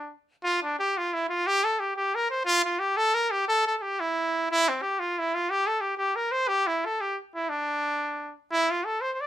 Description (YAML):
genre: celtic folk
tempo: 119 BPM (dotted quarters)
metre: 6/8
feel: straight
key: D minor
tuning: A4 = 441 Hz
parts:
  - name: clear trumpet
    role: solo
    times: 0.0-9.3 s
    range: C4 to D5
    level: -24 LUFS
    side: equal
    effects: none
room: light reverb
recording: minimal, uncompressed stereo recording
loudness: -24 LUFS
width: side -11 dB against mid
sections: 0.4-8.5 A section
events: none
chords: none